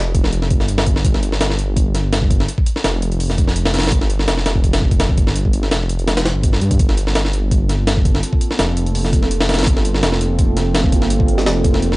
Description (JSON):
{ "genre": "drum and bass, jungle", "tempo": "167 BPM", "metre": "4/4", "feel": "swing 53% on 16ths", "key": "G minor", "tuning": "A4 = 439 Hz", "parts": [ { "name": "detuned saw bass", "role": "bass", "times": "0.0-12.0 s", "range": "F1 to G2", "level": "-18 LUFS", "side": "equal", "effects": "none" }, { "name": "breakbeat sampler-style drum kit", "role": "drums", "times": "0.1-12.0 s", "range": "hi-hat, kick drum, snare drum", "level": "-16 LUFS", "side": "equal", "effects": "studio reverb" }, { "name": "warbly tape-like pad", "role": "sustained chords", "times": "7.5-12.0 s", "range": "Bb3 to A4", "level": "-23 LUFS", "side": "right 2 dB", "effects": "chorus, built-in reverb, phaser" } ], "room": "little or no reverb", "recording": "dry, gritty hardware recording, transformer saturation, vinyl crackle, nothing above 10.3 kHz", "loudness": "-14 LUFS", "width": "side -21 dB against mid", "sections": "0.0-12.0 A section", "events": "none", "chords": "0.0 Gm11" }